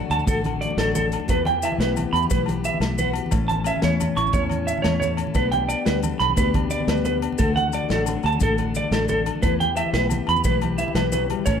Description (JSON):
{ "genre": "highlife guitar band", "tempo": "118 BPM (dotted quarters)", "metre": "12/8", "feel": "straight", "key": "unclear", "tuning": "A4 = 444 Hz", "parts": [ { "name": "picked steel-string acoustic guitar", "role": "accompaniment", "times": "0.0-11.6 s", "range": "A2 to A4", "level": "-28 LUFS", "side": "left 11 dB", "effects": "none" }, { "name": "semi-hollow electric guitar", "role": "arpeggios", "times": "0.1-11.6 s", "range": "A4 to C#6", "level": "-24 LUFS", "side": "right 3 dB", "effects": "spring reverb, slapback echo" }, { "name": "fingered electric bass", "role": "bass", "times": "0.1-11.6 s", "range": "A1 to E2", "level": "-26 LUFS", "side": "right 1 dB", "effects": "none" }, { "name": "warm soul drum kit", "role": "drums", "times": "0.1-11.5 s", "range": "hi-hat, kick drum, snare drum", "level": "-26 LUFS", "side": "right 1 dB", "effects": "none" }, { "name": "agogo bells", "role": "percussion", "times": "0.1-11.6 s", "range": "none", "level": "-35 LUFS", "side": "left 14 dB", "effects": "none" }, { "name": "maracas", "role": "percussion", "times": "0.1-11.5 s", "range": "none", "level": "-37 LUFS", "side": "left 17 dB", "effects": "none" }, { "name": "congas", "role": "percussion", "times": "0.2-11.5 s", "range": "none", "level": "-29 LUFS", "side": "equal", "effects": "none" } ], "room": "light reverb", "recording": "none", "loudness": "-19 LUFS", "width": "side -7 dB against mid", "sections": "0.0-11.6 A section", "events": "none", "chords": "0.0 D; 1.3 Em; 3.3 A; 5.4 G/B; 7.4 D; 9.4 Em" }